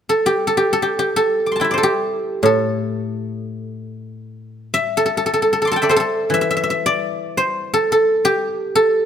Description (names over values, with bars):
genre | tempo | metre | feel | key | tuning
chinese traditional, Chinese solo plucked strings | free time | none | none | A yu mode | A4 = 442 Hz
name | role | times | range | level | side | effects
guzheng | solo | 0.1-9.1 s | A2 to D6 | -16 LUFS | equal | none
room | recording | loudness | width
light reverb | close, detailed microphones | -16 LUFS | side -8 dB against mid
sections
0.0-6.3 A section; 6.3-9.1 B section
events
none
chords
none